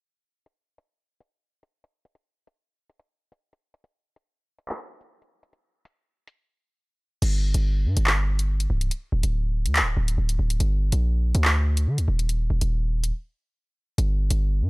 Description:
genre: hip hop, drill.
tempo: 142 BPM.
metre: 4/4.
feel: half-time.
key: G minor.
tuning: A4 = 442 Hz.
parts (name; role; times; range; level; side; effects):
drill drum kit; drums; 0.5-14.4 s; crash cymbal, handclaps, hi-hat; -26 LUFS; equal; none.
hard-hitting 808-style bass; bass; 7.2-14.7 s; C1 to D3; -22 LUFS; equal; none.
room: digital ambience.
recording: dry, gritty hardware recording, low-pass filter.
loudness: -21 LUFS.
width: side -26 dB against mid.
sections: 0.5-7.2 A section; 7.2-14.7 B section.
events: filter sweep 0.5-7.2; break 6.4-7.2, 13.1-14.0.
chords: none.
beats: | 0.46 0.88 1.31 1.73 | 2.15 2.57 3.00 3.42 | 3.84 4.26 4.69 5.11 | 5.53 5.95 6.38 6.80 | 7.22 7.64 8.07 8.49 | 8.91 9.33 9.76 10.18 | 10.60 11.02 11.45 11.87 | 12.29 12.71 13.14 13.56 | 13.98 14.40.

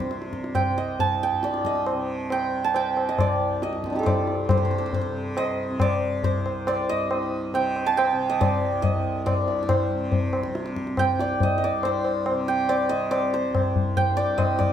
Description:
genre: indian classical, Hindustani.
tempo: 139 BPM.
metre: 3/4.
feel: straight.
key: C raga shivaranjani.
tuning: A4 = 438 Hz.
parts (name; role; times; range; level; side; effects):
santur; melody; 0.0-14.7 s; C4 to A5; -25 LUFS; right 2 dB; plate reverb.
tanpura; drone; 0.0-14.7 s; C2 to C3; -31 LUFS; right 1 dB; none.
tabla; percussion; 0.0-14.7 s; none; -25 LUFS; left 2 dB; none.
room: moderate small room reverb, RT60 0.5 s.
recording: close, detailed microphones.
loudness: -22 LUFS.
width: side -9 dB against mid.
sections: 0.0-4.5 A section; 4.5-14.7 B section.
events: speeding up 0.0-14.7.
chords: none.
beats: 0.11 | 0.55 0.99 1.43 | 1.87 2.31 2.75 | 3.19 3.62 4.06 | 4.50 4.93 5.37 | 5.80 6.24 6.67 | 7.11 7.54 7.97 | 8.41 8.84 9.27 | 9.70 10.13 10.56 | 10.99 11.41 11.84 | 12.27 12.70 13.12 | 13.55 13.97 14.39.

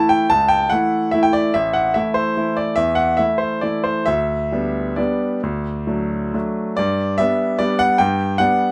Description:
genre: classical, piano waltz.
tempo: 128-157 BPM.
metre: 3/4.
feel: rubato.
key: G major.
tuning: A4 = 440 Hz.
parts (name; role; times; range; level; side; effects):
bright grand piano; solo; 0.0-8.7 s; A1 to A5; -19 LUFS; equal; none.
room: light reverb.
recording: close, detailed microphones.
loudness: -19 LUFS.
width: mono.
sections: 0.0-6.8 A section; 6.8-8.7 B section.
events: none.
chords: 0.0 A/C#; 1.5 Am; 4.1 G/D; 5.4 D; 6.8 G.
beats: | 0.29 0.69 1.11 | 1.53 1.95 2.36 | 2.77 3.18 3.62 | 4.08 4.53 4.98 | 5.43 5.88 6.34 | 6.79 7.20 7.61 | 8.00 8.39.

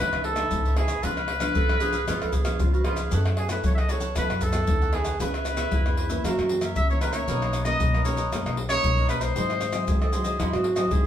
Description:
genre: samba and choro.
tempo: 115 BPM.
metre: 4/4.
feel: straight.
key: C# minor.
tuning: A4 = 438 Hz.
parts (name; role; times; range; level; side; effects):
warm trumpet; melody; 0.0-10.0 s; G#4 to E5; -28 LUFS; equal; none.
cavaquinho; accompaniment; 0.0-11.0 s; D#4 to F#5; -33 LUFS; equal; none.
nylon-string guitar; accompaniment; 0.0-11.1 s; F#2 to A4; -33 LUFS; left 3 dB; none.
upright bass; bass; 0.0-11.1 s; G#1 to F#3; -29 LUFS; equal; none.
maracas, pandeiro, tamborim and surdo; percussion; 0.1-11.0 s; none; -26 LUFS; equal; none.
breathy clarinet; second line; 1.6-6.6, 9.9-11.1 s; E4 to A4; -29 LUFS; right 4 dB; none.
room: wet studio reverb, RT60 0.6 s.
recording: band playing live in one room.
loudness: -22 LUFS.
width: side -10 dB against mid.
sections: 0.0-11.1 A section.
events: none.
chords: 0.0 C#m9; 1.0 C#7b9; 3.1 F#m7; 5.2 C#m7; 6.2 F#7; 7.3 Bmaj9; 9.4 G#7b13.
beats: 0.51 | 1.03 1.55 2.08 2.60 | 3.12 3.64 4.16 4.68 | 5.20 5.72 6.24 6.76 | 7.28 7.80 8.32 8.84 | 9.36 9.88 10.40 10.92.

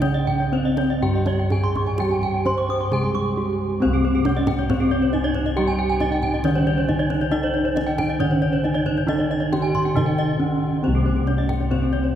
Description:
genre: Balinese gamelan.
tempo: 137 BPM.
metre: 4/4.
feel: straight.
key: C pelog.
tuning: A4 = 440 Hz.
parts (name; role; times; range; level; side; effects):
gamelan-type bronze metallophone; melody; 0.0-12.1 s; C4 to C5; -23 LUFS; right 1 dB; none.
gamelan-type bronze metallophone; accompaniment; 0.0-12.2 s; C3 to Ab3-20c; -29 LUFS; equal; none.
gamelan-type bronze metallophone; arpeggios; 0.0-12.0 s; C5 to Eb6-30c; -28 LUFS; left 4 dB; none.
gamelan-type bossed gongs; bass; 0.0-12.2 s; C2 to G4-30c; -23 LUFS; equal; none.
kendang; percussion; 0.0-12.1 s; none; -31 LUFS; right 1 dB; none.
gamelan-type bronze metallophone; arpeggios; 0.1-12.1 s; Ab4-20c to Db6+20c; -29 LUFS; right 3 dB; none.
room: wet cathedral reverb, RT60 6.3 s.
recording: recorded in a church or concert hall.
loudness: -19 LUFS.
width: side -10 dB against mid.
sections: 0.0-3.8 A section; 3.8-12.2 B section.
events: break 3.1-3.8.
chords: none.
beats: | 0.01 0.52 1.02 1.51 | 1.99 2.46 2.92 3.37 | 3.81 4.25 4.69 5.13 | 5.57 6.01 6.45 6.88 | 7.32 7.76 8.20 8.64 | 9.07 9.51 9.95 10.39 | 10.83 11.27 11.71 12.14.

